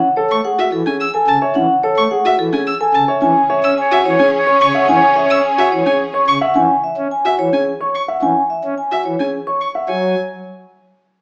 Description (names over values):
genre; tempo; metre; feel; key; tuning
classical, minimalist pattern music; 108 BPM; 3/4; straight; unclear; A4 = 440 Hz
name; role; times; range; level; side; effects
vibraphone with medium mallets; melody; 0.0-10.1 s; G#4 to C#6; -15 LUFS; equal; none
dark grand piano; arpeggios; 0.0-10.1 s; C#4 to E5; -19 LUFS; equal; none
pipe organ, principal; accompaniment; 0.3-10.1 s; C#3 to C#4; -23 LUFS; equal; none
rich violin; arpeggios; 0.3-10.1 s; E5 to E6; -21 LUFS; equal; none
warm clarinet; second line; 3.2-6.3 s; C#5; -18 LUFS; equal; none
rich symphonic string section; sustained chords; 3.2-6.4 s; C#4 to G#4; -23 LUFS; equal; none
room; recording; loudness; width
wet large studio reverb, RT60 1.4 s; small speaker sound; -12 LUFS; side -39 dB against mid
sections
0.0-9.9 A section; 9.9-11.2 B section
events
none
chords
0.0 Amaj7; 3.2 C#m; 9.9 F#sus2